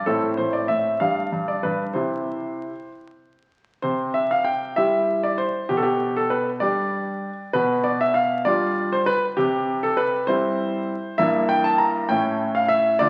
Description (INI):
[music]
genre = classical-period piano sonatina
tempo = 65 BPM (dotted quarters)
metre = 6/8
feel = straight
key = C major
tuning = A4 = 440 Hz
[part]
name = clear grand piano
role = solo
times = 0.0-13.1 s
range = G2 to Bb5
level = -22 LUFS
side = equal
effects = none
[sound]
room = wet recital hall reverb, RT60 1.4 s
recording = very old 78 rpm record, vinyl crackle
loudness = -22 LUFS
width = mono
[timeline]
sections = 0.0-3.8 A section; 3.8-13.1 B section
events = none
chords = 0.1 Am; 1.0 G5; 1.9 C; 5.7 G/B; 7.5 G7/B; 9.4 C; 11.2 Em7b5/G; 12.1 A7